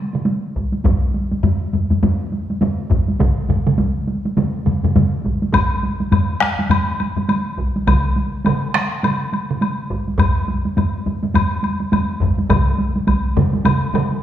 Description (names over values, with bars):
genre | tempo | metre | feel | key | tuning
japanese traditional, taiko drum ensemble | 103 BPM | 4/4 | swing 60% on 16ths | none | none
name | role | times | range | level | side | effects
solo taiko drums | percussion | 0.1-14.2 s | none | -21 LUFS | right 2 dB | none
taiko ensemble | percussion | 0.1-14.1 s | none | -22 LUFS | right 3 dB | none
taiko ensemble | percussion | 0.6-13.2 s | none | -20 LUFS | equal | none
taiko ensemble | percussion | 0.8-14.1 s | none | -20 LUFS | left 2 dB | none
woodblock | percussion | 5.5-14.1 s | none | -24 LUFS | left 4 dB | none
room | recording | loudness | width
wet recital hall reverb, RT60 1.6 s | recorded in a church or concert hall | -16 LUFS | side -11 dB against mid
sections
0.0-14.2 A section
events
none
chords
none